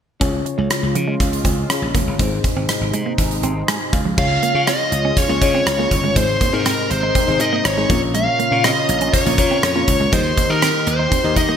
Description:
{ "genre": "1980s-style pop", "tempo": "121 BPM", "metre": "4/4", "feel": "straight", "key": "unclear", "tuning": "A4 = 440 Hz", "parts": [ { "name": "FM electric piano", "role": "accompaniment", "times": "0.2-11.6 s", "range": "Ab2 to C6", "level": "-23 LUFS", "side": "left 6 dB", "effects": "chorus" }, { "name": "sweeping resonant pad", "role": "sustained chords", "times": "0.2-11.6 s", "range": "C3 to G4", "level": "-27 LUFS", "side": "right 2 dB", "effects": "chorus" }, { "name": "clean electric guitar", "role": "riff", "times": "0.2-11.6 s", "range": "F3 to Eb4", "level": "-26 LUFS", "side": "right 8 dB", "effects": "analog chorus, ping-pong delay" }, { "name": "glassy slap bass", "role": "bass", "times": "0.2-11.6 s", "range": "F1 to Eb3", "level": "-23 LUFS", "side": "equal", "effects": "none" }, { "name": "gated 80s drum kit", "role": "drums", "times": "0.2-11.5 s", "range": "crash cymbal, hi-hat, kick drum, rim click", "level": "-20 LUFS", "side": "equal", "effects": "none" }, { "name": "bluesy overdriven lead guitar", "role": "melody", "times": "4.2-11.6 s", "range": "Bb4 to F5", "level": "-18 LUFS", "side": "equal", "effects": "distortion, ping-pong delay" } ], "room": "moderate plate reverb, RT60 1.9 s", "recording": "bright 1980s-style digital production", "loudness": "-15 LUFS", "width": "side -8 dB against mid", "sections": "0.2-4.2 A section; 4.2-11.6 B section", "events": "FM electric piano fill 3.2-4.2", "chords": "0.2 Db; 2.2 Ab; 3.9 Db; 6.2 Ab; 7.9 Bbm; 10.1 Eb" }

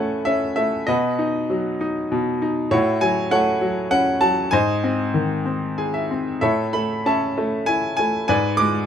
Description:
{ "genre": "classical, lyrical solo piano", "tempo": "97 BPM", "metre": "3/4", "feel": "uneven beats, rubato", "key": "unclear", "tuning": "A4 = 440 Hz", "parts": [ { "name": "bright grand piano", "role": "solo", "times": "0.0-8.9 s", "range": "G#2 to D6", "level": "-18 LUFS", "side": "equal", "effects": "none" } ], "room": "light reverb", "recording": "close, detailed microphones", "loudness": "-18 LUFS", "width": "side -8 dB against mid", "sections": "0.0-8.9 A section", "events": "grand piano fill 5.5-6.4", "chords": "0.0 A; 0.9 B; 2.7 F#m7/A; 4.5 G#; 6.4 A; 8.3 E7/G# (rootless)" }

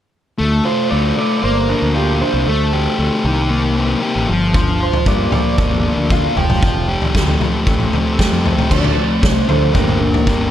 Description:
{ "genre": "indie rock", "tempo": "115 BPM", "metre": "4/4", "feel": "straight", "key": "G minor", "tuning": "A4 = 440 Hz", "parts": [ { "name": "thick fuzz guitar", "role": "riff", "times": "0.4-10.5 s", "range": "Eb3 to G4", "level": "-17 LUFS", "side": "left 2 dB", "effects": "distortion, slapback echo" }, { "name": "fuzz fingered electric bass", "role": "bass", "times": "0.4-10.5 s", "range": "F1 to D3", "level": "-19 LUFS", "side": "equal", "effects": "overdrive" }, { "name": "electric guitar through a small old amp", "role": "melody", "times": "0.6-10.5 s", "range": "G4 to G5", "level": "-22 LUFS", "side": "right 4 dB", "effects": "slapback echo, tape echo" }, { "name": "loose indie drum kit", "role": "drums", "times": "4.5-10.4 s", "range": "crash cymbal, kick drum, snare drum, toms", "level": "-16 LUFS", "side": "equal", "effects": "none" } ], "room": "moderate lush hall reverb, RT60 2.2 s", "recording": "big arena sound", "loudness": "-13 LUFS", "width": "side -11 dB against mid", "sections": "0.4-8.7 A section; 8.7-10.5 B section", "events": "none", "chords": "0.4 Dm; 1.4 Gm7; 2.5 D7sus4; 3.2 Cm7; 4.3 Gm7; 6.4 Fadd9; 8.7 Dm7; 9.7 Gm" }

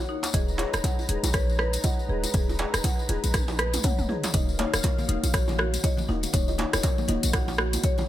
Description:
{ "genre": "afro house", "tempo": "120 BPM", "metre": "4/4", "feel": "swing 59% on 16ths", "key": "Eb minor", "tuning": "A4 = 440 Hz", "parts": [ { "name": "kalimba", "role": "melody", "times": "0.0-8.1 s", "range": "Cb5 to Gb5", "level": "-35 LUFS", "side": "left 5 dB", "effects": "none" }, { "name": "warm analog pad", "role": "sustained chords", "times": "0.0-8.1 s", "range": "Eb3 to Bb5", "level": "-37 LUFS", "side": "right 1 dB", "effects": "chorus, sidechain pumping" }, { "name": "marimba with medium hard mallets", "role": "arpeggios", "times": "0.1-7.9 s", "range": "Eb4 to Gb5", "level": "-34 LUFS", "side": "left 2 dB", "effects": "sidechain pumping, ping-pong delay" }, { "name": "deep house drum kit", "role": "drums", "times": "0.2-8.0 s", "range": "hi-hat, rim click, toms", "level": "-29 LUFS", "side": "equal", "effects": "overdrive" }, { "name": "djembe", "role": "percussion", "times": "0.2-8.1 s", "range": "none", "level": "-35 LUFS", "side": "right 4 dB", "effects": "none" }, { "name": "tambourine", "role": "percussion", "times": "0.2-8.1 s", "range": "none", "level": "-36 LUFS", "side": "left 5 dB", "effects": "none" }, { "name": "warm 808-style bass", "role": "bass", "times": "0.3-7.8 s", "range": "Eb1 to Bb1", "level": "-28 LUFS", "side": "equal", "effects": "sidechain pumping" }, { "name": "electronic kick drum", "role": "drums", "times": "0.3-8.0 s", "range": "none", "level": "-26 LUFS", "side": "equal", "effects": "overdrive" }, { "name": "congas", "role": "percussion", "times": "4.3-8.1 s", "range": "none", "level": "-34 LUFS", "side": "left 1 dB", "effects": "none" } ], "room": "little or no reverb", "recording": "none", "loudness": "-23 LUFS", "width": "side -13 dB against mid", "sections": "0.0-8.1 A section", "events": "drum fill 3.3-4.3", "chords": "0.3 Abm/Eb; 4.3 Ebm7" }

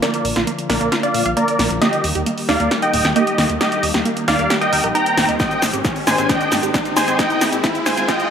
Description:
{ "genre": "uplifting trance", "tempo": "134 BPM", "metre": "4/4", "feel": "straight", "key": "unclear", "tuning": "A4 = 436 Hz", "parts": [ { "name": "dense compressed supersaw", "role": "melody", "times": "0.0-8.3 s", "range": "G4 to Bb5", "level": "-19 LUFS", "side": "equal", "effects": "sidechain pumping, low-pass filter, dub echo" }, { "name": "tight sequenced synth", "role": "arpeggios", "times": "0.0-8.2 s", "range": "Bb3 to G5", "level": "-24 LUFS", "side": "right 4 dB", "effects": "chorus, phaser, sidechain pumping, dub echo" }, { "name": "punchy analog drum machine", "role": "drums", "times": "0.0-8.3 s", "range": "hi-hat, shaker, snare drum", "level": "-21 LUFS", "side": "equal", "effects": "overdrive" }, { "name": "riser", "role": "sound effects", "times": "1.5-8.3 s", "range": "none", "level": "-27 LUFS", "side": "left 2 dB", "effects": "none" }, { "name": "fat analog bass", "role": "bass", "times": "0.2-8.1 s", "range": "Eb1 to Bb2", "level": "-27 LUFS", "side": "left 1 dB", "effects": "sidechain pumping" }, { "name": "electronic kick drum", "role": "drums", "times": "5.4-8.2 s", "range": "none", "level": "-24 LUFS", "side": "equal", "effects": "overdrive" } ], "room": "moderate lush hall reverb, RT60 1.8 s", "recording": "high-pass filter, faint mains hum", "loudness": "-15 LUFS", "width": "side -7 dB against mid", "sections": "0.0-8.3 A section", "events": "build-up 0.0-8.3; drum fill 0.0-8.3; filter sweep on supersaw synth 0.0-8.3; riser 1.5-8.3", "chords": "0.0 Bb; 1.8 Eb; 5.4 Abmaj7" }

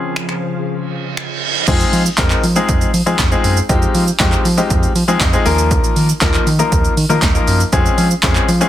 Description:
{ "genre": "dance-pop", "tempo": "119 BPM", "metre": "4/4", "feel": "straight", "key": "F minor", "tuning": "A4 = 440 Hz", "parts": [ { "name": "clear baby grand piano", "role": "accompaniment", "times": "0.0-8.7 s", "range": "F3 to Ab5", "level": "-18 LUFS", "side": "left 3 dB", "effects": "sidechain pumping, low-pass filter" }, { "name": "soft string machine", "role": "sustained chords", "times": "0.0-1.7 s", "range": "Db3 to F5", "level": "-25 LUFS", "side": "left 1 dB", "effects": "ensemble chorus, sidechain pumping, low-pass filter" }, { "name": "punchy analog drum machine", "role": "drums", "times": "0.2-8.7 s", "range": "crash cymbal, finger snaps, handclaps, hi-hat, kick drum, shaker, snare drum", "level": "-16 LUFS", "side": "right 1 dB", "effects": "soft clipping on snare" }, { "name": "reverse cymbal", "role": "sound effects", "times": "0.9-1.7 s", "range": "none", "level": "-20 LUFS", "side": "right 9 dB", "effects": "none" }, { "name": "round analog bass", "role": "bass", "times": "1.7-8.6 s", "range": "Eb2 to F3", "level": "-16 LUFS", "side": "right 1 dB", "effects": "sidechain pumping" } ], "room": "digital ambience", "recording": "dense, heavily limited modern master", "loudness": "-12 LUFS", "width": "side -12 dB against mid", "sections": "0.0-1.7 A section; 1.7-8.7 B section", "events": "filter sweep 0.0-1.7; reverse cymbal 0.9-1.7; drop 1.7-8.7; grand piano fill 5.0-5.7", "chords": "0.0 Dbmaj7; 1.7 Fm7; 5.5 Ebsus2; 7.7 Dbmaj7/F" }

